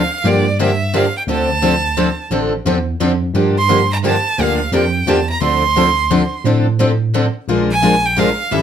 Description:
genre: acoustic string swing (jazz manouche).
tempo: 174 BPM.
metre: 3/4.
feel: swing 60% on 8ths.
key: D minor.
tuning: A4 = 443 Hz.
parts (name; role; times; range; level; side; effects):
bright violin; melody; 0.0-8.6 s; D5 to C6; -17 LUFS; right 5 dB; none.
tine electric piano; bass; 0.0-8.6 s; A1 to A2; -19 LUFS; right 1 dB; medium stereo tremolo.
picked steel-string acoustic guitar; accompaniment; 0.2-8.6 s; D3 to Bb4; -17 LUFS; left 5 dB; none.
picked steel-string acoustic guitar; accompaniment; 0.2-8.6 s; D3 to A4; -21 LUFS; right 6 dB; none.
room: moderate studio ambience, RT60 0.5 s.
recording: none.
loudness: -13 LUFS.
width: side -8 dB against mid.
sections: 0.0-8.6 A section.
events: none.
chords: 0.2 Gm7; 1.3 Dm9; 3.4 Gm9; 5.4 Dm7; 7.5 Bb7.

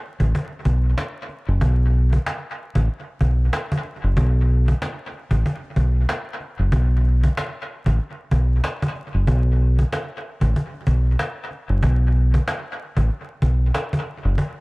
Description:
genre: hip hop, boom-bap hip-hop.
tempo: 94 BPM.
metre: 4/4.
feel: swing 58% on 16ths.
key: unclear.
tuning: A4 = 440 Hz.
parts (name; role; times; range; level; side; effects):
deep dub fingered electric bass; bass; 0.2-14.4 s; F#1 to B1; -17 LUFS; equal; none.
cajon; drums; 0.2-14.6 s; none; -26 LUFS; equal; dub echo.
room: little or no reverb.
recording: echo-heavy mix, vinyl crackle.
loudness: -18 LUFS.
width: side -27 dB against mid.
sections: 0.0-14.6 A section.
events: none.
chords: none.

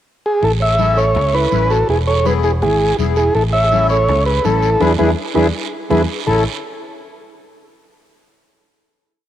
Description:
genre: latin, cumbia.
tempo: 164 BPM.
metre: 4/4.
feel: straight.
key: A major.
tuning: A4 = 440 Hz.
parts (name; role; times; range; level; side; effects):
combo organ; melody; 0.3-6.4 s; E4 to E5; -16 LUFS; equal; cassette tape.
mellow electric guitar; second line; 0.4-6.4 s; D4 to C#5; -24 LUFS; right 7 dB; cassette tape.
fingered electric bass; bass; 0.4-6.4 s; E1 to E2; -18 LUFS; equal; none.
congas; percussion; 0.4-6.4 s; none; -26 LUFS; left 10 dB; none.
guiro; percussion; 0.4-6.4 s; none; -30 LUFS; right 11 dB; none.
accordion; accompaniment; 0.8-6.4 s; B3 to B4; -24 LUFS; left 8 dB; cassette tape.
room: moderate lush hall reverb, RT60 2.8 s.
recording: home recording on cassette.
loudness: -13 LUFS.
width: side -11 dB against mid.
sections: 0.0-0.4 pickup bar; 0.4-6.3 groove; 6.3-7.7 final chord.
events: band accent 4.8-6.3.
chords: 0.4 A; 1.9 E; 3.4 A; 4.8 E7; 6.3 A.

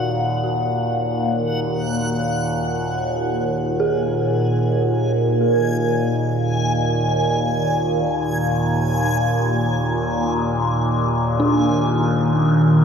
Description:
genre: dark ambient drone.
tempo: free time.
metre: none.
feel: none.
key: Eb harmonic minor.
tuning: A4 = 440 Hz.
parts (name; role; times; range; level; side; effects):
dark detuned synth bell; arpeggios; 0.0-12.8 s; D4 to Ab4; -27 LUFS; right 1 dB; chorus, ping-pong delay.
overtone-sweeping drone; drone; 0.0-12.8 s; Eb2 to Bb2; -19 LUFS; equal; chorus, built-in reverb, phaser.
backwards swelling texture; texture; 0.0-12.8 s; Gb5 to Ab5; -27 LUFS; equal; built-in reverb.
dark analog pad; sustained chords; 11.8-12.8 s; D#3; -17 LUFS; equal; chorus.
room: wet cathedral reverb, RT60 5.4 s.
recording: in a vast, echoing space.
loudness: -18 LUFS.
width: side -6 dB against mid.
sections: 0.0-2.8 A section; 2.8-12.8 B section.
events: fade-out on synth texture 2.8-12.8.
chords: 0.0 Ebmmaj7; 2.8 Ebm; 11.3 N.C..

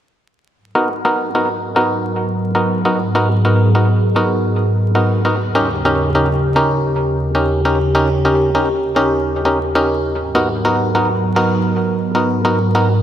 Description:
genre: glitch hop.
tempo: 100 BPM.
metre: 4/4.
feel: swing 63% on 16ths.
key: G# minor.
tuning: A4 = 440 Hz.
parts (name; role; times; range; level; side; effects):
warbly tape-like pad; sustained chords; 0.6-13.0 s; D#2 to A#4; -17 LUFS; equal; chorus, built-in reverb.
muted clav; stabs; 0.8-12.9 s; B3 to A#4; -16 LUFS; equal; low-pass filter, analog delay.
room: wet plate reverb, RT60 3.4 s.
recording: dreamy mix soaked in reverb, vinyl crackle.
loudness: -14 LUFS.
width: side -10 dB against mid.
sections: 0.6-13.0 A section.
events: filter sweep on ambient pad 0.6-13.0.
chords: 0.6 G#m9; 5.4 D#7; 10.2 G#m9.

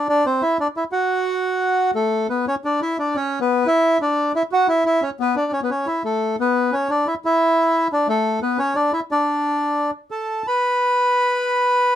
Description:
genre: tango.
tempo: 177 BPM.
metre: 3/4.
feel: rubato.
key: unclear.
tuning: A4 = 440 Hz.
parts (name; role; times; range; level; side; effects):
bandoneon; solo; 0.0-12.0 s; A3 to B5; -17 LUFS; equal; none.
room: light reverb.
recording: close, detailed microphones.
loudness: -18 LUFS.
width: side -11 dB against mid.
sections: 0.0-2.1 A section; 2.1-10.3 B section; 10.3-12.0 C section.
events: none.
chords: 0.1 Cadd9; 1.1 F#m; 2.1 D5; 3.1 E5; 4.2 Dadd9; 5.2 Aadd9; 7.2 Asus4; 8.2 Asus2; 8.6 C#m; 9.2 D5; 10.3 Asus2; 11.3 N.C..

